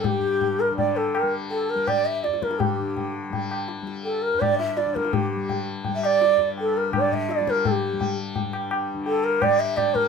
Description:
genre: indian classical, Hindustani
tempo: 167 BPM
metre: 7/4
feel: straight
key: G raga shivaranjani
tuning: A4 = 440 Hz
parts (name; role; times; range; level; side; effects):
- mellow bansuri; melody; 0.0-10.1 s; G4 to E5; -22 LUFS; right 2 dB; none
- tanpura; drone; 0.0-10.1 s; G2 to G3; -31 LUFS; left 4 dB; none
- tabla; percussion; 0.0-10.1 s; none; -28 LUFS; left 4 dB; none
room: moderate studio reverb, RT60 0.5 s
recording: minimal, uncompressed stereo recording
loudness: -21 LUFS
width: side -5 dB against mid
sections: 0.0-10.1 A section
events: speeding up 0.0-10.1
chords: none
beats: | 0.04 0.41 0.77 1.14 1.50 1.87 2.23 | 2.59 2.96 3.32 3.68 4.04 4.41 4.76 | 5.12 5.49 5.84 6.20 6.56 6.92 7.28 | 7.63 7.99 8.35 8.70 9.06 9.41 9.77

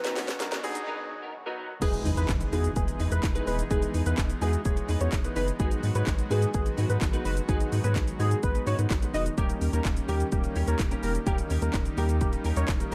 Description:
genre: dance-pop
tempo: 127 BPM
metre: 4/4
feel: straight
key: unclear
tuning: A4 = 440 Hz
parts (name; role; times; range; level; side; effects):
- clear baby grand piano; accompaniment; 0.0-12.9 s; F#3 to A#5; -38 LUFS; equal; sidechain pumping
- warm analog pad; sustained chords; 0.0-12.9 s; D#3 to G#4; -40 LUFS; equal; chorus, tremolo, sidechain pumping
- clean electric guitar; riff; 0.0-12.9 s; B3 to B4; -40 LUFS; equal; ensemble chorus
- warm sub bass; bass; 0.0-12.9 s; D#1 to G#2; -30 LUFS; equal; sidechain pumping
- house drum kit; drums; 0.0-12.9 s; crash cymbal, handclaps, hi-hat, kick drum, shaker, snare drum; -32 LUFS; equal; overdrive
- riser and impact; sound effects; 0.0-3.7 s; none; -40 LUFS; equal; none
- unison lead; melody; 1.8-12.9 s; G4 to D#5; -36 LUFS; equal; none
room: light reverb, digital ambience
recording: dark, warm production, high-pass filter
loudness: -27 LUFS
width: mono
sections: 0.0-1.8 A section; 1.8-12.9 B section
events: build-up 0.0-1.8; drum fill 0.0-0.9; riser 0.0-1.8; break 0.9-1.8; drop 1.8-12.9; impact 1.8-3.7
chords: 0.0 Bmaj7/D#; 1.8 Emaj7; 5.6 G#m7; 9.4 D#7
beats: 0.40 0.87 1.34 | 1.82 2.29 2.76 3.23 | 3.71 4.18 4.65 5.12 | 5.60 6.07 6.54 7.01 | 7.49 7.96 8.43 8.90 | 9.38 9.85 10.32 10.79 | 11.27 11.74 12.21 12.68

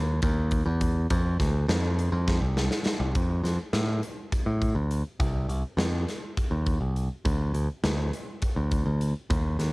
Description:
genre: progressive instrumental, band music in an uneven meter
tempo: 205 BPM (eighths)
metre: 7/8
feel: straight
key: F mixolydian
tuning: A4 = 437 Hz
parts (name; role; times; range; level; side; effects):
- modern bright picked electric bass; bass; 0.0-9.7 s; C2 to A2; -25 LUFS; equal; none
- big rock drum kit; drums; 0.2-9.7 s; hi-hat, kick drum, snare drum; -29 LUFS; equal; cassette tape
room: little or no reverb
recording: home recording on cassette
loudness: -24 LUFS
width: side -24 dB against mid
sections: 0.0-3.2 A section; 3.2-9.7 B section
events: drum fill 2.3-3.2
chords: none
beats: 0.23 0.52 0.81 | 1.10 1.40 1.69 1.98 2.27 2.57 2.86 | 3.15 3.44 3.74 4.03 4.32 4.61 4.91 | 5.20 5.49 5.79 6.08 6.37 6.66 6.96 | 7.25 7.54 7.83 8.13 8.42 8.71 9.01 | 9.30 9.59

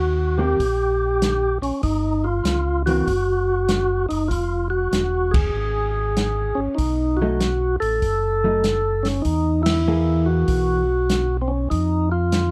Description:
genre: soul jazz organ trio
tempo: 97 BPM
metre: 4/4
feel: swing 67% on 8ths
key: unclear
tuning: A4 = 440 Hz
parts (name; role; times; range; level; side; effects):
- percussive tonewheel organ; melody; 0.0-12.5 s; C4 to A4; -24 LUFS; equal; slow rotary speaker
- mellow tonewheel organ; bass; 0.0-12.5 s; Fb1 to F2; -26 LUFS; equal; slow rotary speaker
- hollow-body jazz guitar; accompaniment; 0.4-3.1, 7.2-10.8 s; Eb3 to G#4; -26 LUFS; equal; none
- open jazz drum kit; drums; 0.6-12.5 s; hi-hat, kick drum, ride cymbal, snare drum; -27 LUFS; equal; none
room: light reverb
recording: dark, warm production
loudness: -21 LUFS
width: mono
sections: 0.0-12.5 A section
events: band accent 5.2-5.5, 9.6-9.9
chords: 0.0 Eb; 1.8 Gm7; 3.1 Ebm/Gb; 4.3 Fm; 6.8 B7; 9.3 Eadd9; 11.7 F7(no3)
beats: 0.59 1.21 | 1.83 2.45 3.07 3.69 | 4.31 4.93 5.55 6.17 | 6.79 7.40 8.02 8.64 | 9.26 9.87 10.49 11.11 | 11.72 12.34

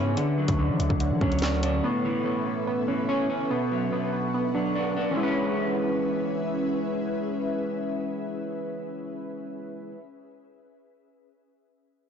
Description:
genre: hip hop, drill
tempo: 144 BPM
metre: 4/4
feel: half-time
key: C# phrygian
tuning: A4 = 440 Hz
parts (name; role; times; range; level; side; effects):
- electric guitar at the edge of break-up; accompaniment; 0.0-10.0 s; A2 to D4; -28 LUFS; equal; wide subtle chorus
- ethereal airy pad; sustained chords; 0.0-9.3 s; D3 to F#5; -34 LUFS; left 3 dB; ensemble chorus, built-in reverb
- warbly lo-fi synth keys; arpeggios; 0.0-10.0 s; C#3 to B4; -29 LUFS; right 2 dB; chorus, tape echo
- long sustained 808-style bass; bass; 0.0-1.8 s; D2 to F#3; -27 LUFS; left 1 dB; none
- drill drum kit; drums; 0.2-1.7 s; hi-hat, kick drum, snare drum; -28 LUFS; left 1 dB; none
room: light reverb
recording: blown-out, overdriven recording, overdrive, nothing above 7.8 kHz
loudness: -24 LUFS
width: side -7 dB against mid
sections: 0.0-5.2 A section; 5.2-8.5 B section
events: none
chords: 0.2 Dmaj7; 1.8 Aadd9; 3.5 Bm7; 5.2 C#m7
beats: | 0.17 0.59 1.00 1.42 | 1.84 2.25 2.67 3.09 | 3.50 3.92 4.34 4.75 | 5.17 5.59 6.00 6.42 | 6.84 7.25 7.67 8.09

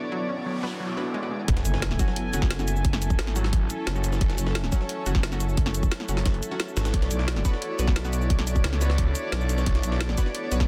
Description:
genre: dark technical drum and bass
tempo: 176 BPM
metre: 4/4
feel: straight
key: F# minor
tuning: A4 = 439 Hz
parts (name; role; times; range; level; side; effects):
- dark studio string section; sustained chords; 0.0-10.7 s; F#3 to G#5; -36 LUFS; equal; sidechain pumping
- granular cloud pad; texture; 0.0-10.7 s; B3 to C#5; -38 LUFS; equal; built-in reverb, sidechain pumping
- analog pluck; arpeggios; 0.1-1.4 s; F#3 to D4; -37 LUFS; equal; chorus, sidechain pumping, digital delay
- noise sweep and impact; sound effects; 0.4-2.8 s; none; -36 LUFS; equal; none
- orchestra-hit-like synth stab; stabs; 0.6-10.6 s; F#3 to B4; -38 LUFS; equal; built-in reverb, digital delay
- snarling distorted saw bass; bass; 1.5-4.4, 6.8-9.8 s; F#1 to C#2; -28 LUFS; equal; distortion, tube saturation
- drum and bass drum kit; drums; 1.5-10.7 s; cabasa, hi-hat, snare drum; -34 LUFS; equal; none
- electronic kick drum; drums; 1.5-10.7 s; none; -26 LUFS; equal; none
- jungle sampler-style drum kit; drums; 1.5-10.6 s; hi-hat, snare drum; -41 LUFS; equal; none
- growling FM bass; bass; 1.7-10.7 s; F#1 to B1; -29 LUFS; equal; none
room: little or no reverb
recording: dense, heavily limited modern master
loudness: -26 LUFS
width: mono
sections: 0.0-1.5 A section; 1.5-10.7 B section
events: noise sweep 0.4-1.5; drop 1.5-10.7; impact 1.5-2.8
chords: 0.0 Bm; 1.5 F#m; 6.9 Bm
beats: | 0.12 0.46 0.80 1.14 | 1.48 1.82 2.17 2.51 | 2.85 3.19 3.53 3.87 | 4.21 4.55 4.89 5.23 | 5.57 5.92 6.26 6.60 | 6.94 7.28 7.62 7.96 | 8.30 8.64 8.98 9.32 | 9.66 10.01 10.35

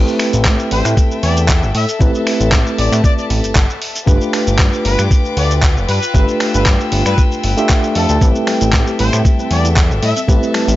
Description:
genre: nu-disco, nu disco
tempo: 116 BPM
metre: 4/4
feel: swing 54% on 16ths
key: A minor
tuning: A4 = 440 Hz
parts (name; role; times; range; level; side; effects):
- tine electric piano; accompaniment; 0.0-10.8 s; A3 to E5; -19 LUFS; right 1 dB; medium stereo tremolo, sidechain pumping, analog delay
- rich chamber string section; sustained chords; 0.0-10.8 s; F4 to E6; -23 LUFS; left 4 dB; sidechain pumping
- fat analog bass; bass; 0.0-10.8 s; F1 to A2; -16 LUFS; equal; sidechain pumping
- dusty soul sampler-style drum kit; drums; 0.1-10.8 s; finger snaps, handclaps, hi-hat, shaker; -20 LUFS; equal; none
- electronic kick drum; drums; 0.5-10.4 s; none; -12 LUFS; equal; none
- bright trumpet section; melody; 0.7-10.2 s; A4 to E5; -24 LUFS; left 2 dB; analog delay
- soft round pluck; arpeggios; 8.2-10.7 s; G3 to G4; -27 LUFS; left 2 dB; none
room: little or no reverb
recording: dry, gritty hardware recording, nothing above 7.6 kHz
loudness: -12 LUFS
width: side -16 dB against mid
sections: 0.0-10.8 A section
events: none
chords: 0.0 Am7; 4.1 G7; 8.2 Am7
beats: 0.46 0.97 1.49 | 2.01 2.52 3.04 3.56 | 4.08 4.59 5.11 5.63 | 6.14 6.66 7.18 7.70 | 8.21 8.73 9.25 9.77 | 10.28

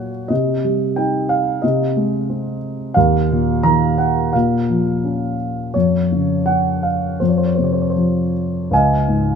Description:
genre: classical, lyrical solo piano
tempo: 78-92 BPM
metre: 4/4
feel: rubato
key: unclear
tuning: A4 = 445 Hz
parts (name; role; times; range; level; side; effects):
- dark concert grand piano; solo; 0.0-9.4 s; Db2 to Bb5; -15 LUFS; equal; none
room: moderate plate reverb, RT60 2.5 s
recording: minimal, uncompressed stereo recording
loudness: -15 LUFS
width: side -6 dB against mid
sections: 0.0-8.7 A section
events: none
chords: 0.3 Cm; 1.6 Ab/C; 3.0 Ebsus2; 4.3 Bbm; 5.7 Dbadd11/F; 7.2 F5; 8.7 Dbadd9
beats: | 0.30 0.98 1.63 2.29 | 2.96 3.64 4.34 5.04 | 5.75 6.47 7.21 7.97 | 8.71

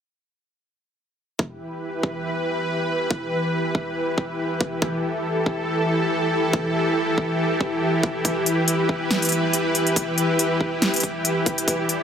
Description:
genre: heavy wobble dubstep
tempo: 140 BPM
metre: 4/4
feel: swing 55% on 16ths, half-time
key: E minor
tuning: A4 = 440 Hz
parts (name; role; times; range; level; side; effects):
- supersaw pad; sustained chords; 1.4-12.0 s; E3 to D5; -22 LUFS; equal; sidechain pumping
- electronic kick drum; drums; 1.4-11.8 s; none; -24 LUFS; equal; high-pass filter on kick
- big-room dance drum kit; drums; 8.2-12.0 s; hi-hat, snare drum; -23 LUFS; equal; overdrive
room: moderate plate reverb, RT60 2.2 s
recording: none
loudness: -20 LUFS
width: side -8 dB against mid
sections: 1.4-12.0 A section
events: none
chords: 1.4 Em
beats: | 1.39 1.82 2.25 2.68 | 3.11 3.53 3.96 4.39 | 4.82 5.25 5.68 6.11 | 6.53 6.96 7.39 7.82 | 8.25 8.68 9.11 9.53 | 9.96 10.39 10.82 11.25 | 11.68

